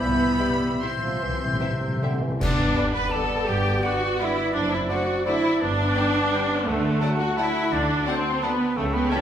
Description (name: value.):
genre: classical, orchestral ballroom waltz.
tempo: 142-184 BPM.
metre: 3/4.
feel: rubato.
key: G major.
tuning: A4 = 441 Hz.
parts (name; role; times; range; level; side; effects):
warm studio violin section; melody; 0.0-9.2 s; G5 to C6; -34 LUFS; right 1 dB; none.
bright silver concert flute; second line; 0.0-9.2 s; A4 to G6; -31 LUFS; left 2 dB; none.
clear clarinet; second line; 0.0-9.2 s; D5 to G5; -34 LUFS; left 1 dB; none.
warm cor anglais; second line; 0.0-9.2 s; A3 to E5; -33 LUFS; right 2 dB; none.
mellow bassoon; accompaniment; 0.0-9.2 s; C3 to C4; -32 LUFS; left 1 dB; none.
mellow French horn section; sustained chords; 0.0-9.2 s; A3 to D4; -31 LUFS; left 1 dB; none.
rich studio double bass section; bass; 0.0-9.1 s; F#1 to D2; -32 LUFS; right 1 dB; none.
warm studio cello section; bass; 0.0-9.1 s; F#2 to C4; -31 LUFS; right 1 dB; none.
timpani; percussion; 0.0-2.3 s; C3; -29 LUFS; equal; none.
warm studio violin section; second line; 0.4-9.2 s; G4 to G5; -37 LUFS; left 4 dB; none.
rich studio viola section; accompaniment; 0.4-9.2 s; G3 to B4; -25 LUFS; right 1 dB; none.
clash cymbals and concert bass drum; percussion; 2.4-3.1 s; none; -31 LUFS; left 1 dB; none.
bright trombone section; sustained chords; 2.7-9.2 s; D3 to A3; -36 LUFS; right 2 dB; none.
mellow trumpet section; stabs; 2.8-9.2 s; D5 to A5; -35 LUFS; equal; none.
room: wet recital hall reverb, RT60 1.5 s.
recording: recorded in a church or concert hall.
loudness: -21 LUFS.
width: side -9 dB against mid.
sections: 0.0-2.4 A section; 2.4-9.2 B section.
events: timpani fill 0.0-2.4; band accent 2.4-2.8.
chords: 0.0 C; 2.4 G; 4.5 D7/F#; 5.6 G; 6.7 D.